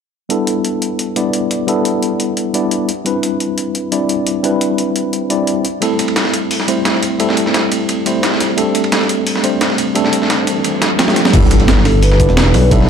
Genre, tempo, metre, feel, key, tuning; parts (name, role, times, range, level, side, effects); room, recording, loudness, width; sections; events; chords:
liquid drum and bass; 174 BPM; 4/4; straight; G major; A4 = 440 Hz
tine electric piano; accompaniment; 0.3-12.9 s; G3 to D5; -15 LUFS; equal; overdrive, medium stereo tremolo, low-pass filter, tape echo
breakbeat sampler-style drum kit; drums; 0.3-12.8 s; crash cymbal, hi-hat, snare drum; -20 LUFS; left 1 dB
dusty soul sampler-style drum kit; drums; 5.8-12.9 s; hi-hat, ride cymbal, snare drum; -18 LUFS; right 1 dB; overdrive, high-pass filter on cymbals, high-pass filter on snare, high-pass filter on hats, high-pass filter on room
riser and impact; sound effects; 9.9-12.7 s; -19 LUFS; equal
smooth synth bass; bass; 11.3-12.9 s; E1 to B1; -12 LUFS; equal
electronic kick drum; drums; 11.3-12.8 s; -13 LUFS; equal
hollow clarinet-like synth lead; melody; 11.7-12.9 s; A4 to E5; -18 LUFS; left 1 dB; lush chorus, digital delay
moderate lush hall reverb, RT60 2.1 s; dark, warm production; -12 LUFS; side -7 dB against mid
0.3-11.3 A section; 11.3-12.9 B section
filter sweep on tine electric piano 0.3-11.3; riser 9.9-11.3; drum fill 11.0-11.3; drop 11.3-12.9; impact 11.3-12.7
0.3 G69; 2.9 Cmaj9; 5.6 Am7; 8.6 D7sus4; 11.3 G69